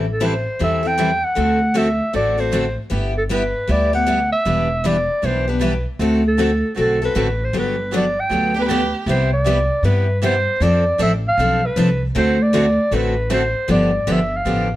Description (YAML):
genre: acoustic string swing (jazz manouche)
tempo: 156 BPM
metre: 4/4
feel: swing 63% on 8ths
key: G major, C major from 9.1 s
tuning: A4 = 439 Hz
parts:
  - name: picked steel-string acoustic guitar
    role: accompaniment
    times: 0.0-14.7 s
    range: C3 to A4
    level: -22 LUFS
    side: left 3 dB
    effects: none
  - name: picked steel-string acoustic guitar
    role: accompaniment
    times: 0.0-14.7 s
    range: C3 to B4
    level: -26 LUFS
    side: right 4 dB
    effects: none
  - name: upright bass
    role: bass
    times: 0.0-14.8 s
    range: E1 to G2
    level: -21 LUFS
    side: equal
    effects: none
  - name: breathy clarinet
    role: melody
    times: 0.1-14.7 s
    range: A4 to G5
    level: -20 LUFS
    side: equal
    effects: none
  - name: warm violin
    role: second line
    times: 8.5-9.0 s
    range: G4 to B4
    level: -24 LUFS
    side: right 5 dB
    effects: none
room: light reverb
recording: dark, warm production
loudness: -16 LUFS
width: side -14 dB against mid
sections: 0.0-9.1 A section; 9.1-14.8 B section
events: none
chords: 0.0 Am7; 1.4 D7; 2.9 G6; 4.5 Em7; 6.0 D7; 7.5 Gmaj7; 9.1 Cmaj9; 10.6 F6; 12.1 D7; 13.7 G9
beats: 0.22 0.60 0.99 | 1.38 1.76 2.15 2.53 | 2.92 3.30 3.69 4.07 | 4.46 4.84 5.22 5.61 | 6.00 6.38 6.76 7.15 | 7.53 7.92 8.30 8.69 | 9.07 9.46 9.84 10.23 | 10.61 10.99 11.38 11.76 | 12.15 12.53 12.92 13.30 | 13.69 14.07 14.46